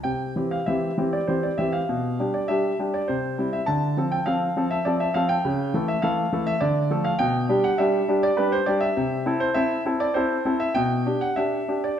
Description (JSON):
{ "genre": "classical-period piano sonatina", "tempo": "101 BPM", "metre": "3/4", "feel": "rubato", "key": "C major, G major from 7.2 s", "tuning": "A4 = 440 Hz", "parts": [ { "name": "clear concert grand piano", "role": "solo", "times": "0.0-12.0 s", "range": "B2 to A5", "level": "-21 LUFS", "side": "equal", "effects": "none" } ], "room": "moderate recital hall reverb, RT60 1.4 s", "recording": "none", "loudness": "-21 LUFS", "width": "side -9 dB against mid", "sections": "0.1-12.0 A section", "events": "none", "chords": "0.1 C; 1.9 G/B; 3.1 C; 3.7 Dm7; 5.5 A/C#; 6.6 Dm; 7.2 G/B; 9.0 Am/C; 10.8 G/B" }